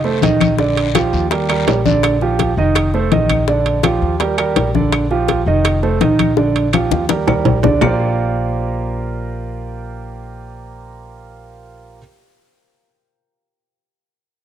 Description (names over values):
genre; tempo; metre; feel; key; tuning
Afro-Cuban jazz; 166 BPM; 4/4; straight; Bb major; A4 = 440 Hz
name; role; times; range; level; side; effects
warm concert grand piano; accompaniment; 0.0-12.0 s; D3 to Eb5; -18 LUFS; right 4 dB; none
upright bass; bass; 0.0-12.0 s; F1 to Eb2; -20 LUFS; left 2 dB; none
bongos; percussion; 0.0-7.9 s; none; -22 LUFS; left 10 dB; none
congas; percussion; 0.0-7.9 s; none; -20 LUFS; left 9 dB; none
guiro; percussion; 0.2-2.0 s; none; -30 LUFS; left 10 dB; none
timbales; percussion; 0.2-7.9 s; none; -22 LUFS; right 7 dB; none
claves; percussion; 0.4-7.9 s; none; -27 LUFS; left 11 dB; none
room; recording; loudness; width
light reverb, small room reverb; home recording on cassette; -13 LUFS; side -10 dB against mid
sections
0.0-7.8 A section; 7.8-10.7 B section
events
drum fill 6.4-7.8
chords
0.0 F7; 0.6 Bb6; 1.3 Ebmaj7; 2.0 Bb6; 2.8 F7; 3.5 Bb6; 4.2 Ebmaj7; 4.9 Bb6; 5.6 F7; 6.4 Bb6; 7.1 Ebmaj7; 7.8 Bb69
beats
0.22 | 0.58 0.95 1.31 1.67 | 2.03 2.39 2.75 3.12 | 3.48 3.84 4.20 4.56 | 4.92 5.29 5.65 6.01 | 6.37 6.73 7.09 7.46 | 7.82 8.18 8.54 8.90 | 9.26 9.62 9.98 10.34